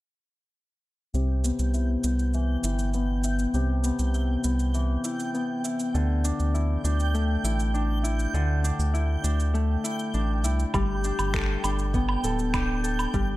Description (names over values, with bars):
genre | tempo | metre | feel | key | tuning
folktronica | 100 BPM | 4/4 | straight | C major | A4 = 440 Hz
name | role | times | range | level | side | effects
Celtic harp | arpeggios | 1.1-13.4 s | C3 to A4 | -28 LUFS | left 2 dB | low-pass filter, tape echo
round analog bass | bass | 1.1-13.4 s | D1 to D2 | -25 LUFS | equal | tube saturation
electronic cabasa, woodblock and finger snaps | drums | 1.1-13.3 s | none | -34 LUFS | right 2 dB | none
backwards swelling texture | texture | 1.1-13.4 s | G5 to G6 | -36 LUFS | right 3 dB | built-in reverb
electronic kick drum | drums | 10.7-13.3 s | none | -29 LUFS | equal | none
room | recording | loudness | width
little or no reverb | none | -23 LUFS | side -17 dB against mid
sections
1.1-13.4 A section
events
filter sweep on analog synth bass 1.1-13.4; filter sweep on harp 1.1-13.4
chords
1.1 Cmaj7; 5.9 Dsus2; 10.7 Gadd9